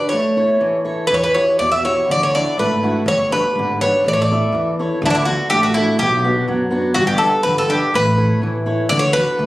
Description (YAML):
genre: greek folk, Greek bouzouki band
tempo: 123 BPM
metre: 2/4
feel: straight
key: D major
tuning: A4 = 440 Hz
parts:
  - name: Greek bouzouki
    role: melody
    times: 0.0-9.5 s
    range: D4 to E5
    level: -16 LUFS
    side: equal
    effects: none
  - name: fingerpicked swing-style acoustic guitar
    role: accompaniment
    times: 0.0-9.5 s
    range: B2 to E5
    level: -20 LUFS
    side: equal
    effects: none
  - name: upright bass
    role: bass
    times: 1.1-9.5 s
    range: G1 to F#2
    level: -23 LUFS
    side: equal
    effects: none
room: moderate small room ambience, RT60 0.5 s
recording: recorded on a phone in the room, studio reverb, compression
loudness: -14 LUFS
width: side -17 dB against mid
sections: 0.0-5.0 A section; 5.0-9.5 B section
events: none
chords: 0.1 A; 1.1 Emadd9; 2.1 Dadd9; 3.1 G; 4.0 A; 5.0 D; 6.0 Bm; 7.0 G; 7.9 A; 8.9 D